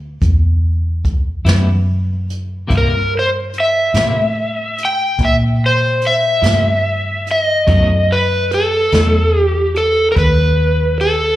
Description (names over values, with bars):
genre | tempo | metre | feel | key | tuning
slow blues | 48 BPM (dotted quarters) | 12/8 | straight | unclear | A4 = 440 Hz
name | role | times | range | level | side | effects
vintage muted fingered electric bass | bass | 0.0-11.4 s | D2 to Bb2 | -17 LUFS | equal | none
jazz brush drum kit | drums | 0.2-11.2 s | hi-hat, kick drum, snare drum | -18 LUFS | equal | none
clean electric guitar | accompaniment | 1.4-9.2 s | B2 to E4 | -24 LUFS | left 2 dB | tremolo, slapback echo
overdriven slide guitar | melody | 2.8-11.4 s | A4 to G5 | -14 LUFS | equal | slapback echo
room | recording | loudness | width
small room ambience | live gig heard through the venue's PA, club reverb | -12 LUFS | side -14 dB against mid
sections
0.0-11.4 A section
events
none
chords
0.0 N.C.; 2.7 C7; 7.7 B7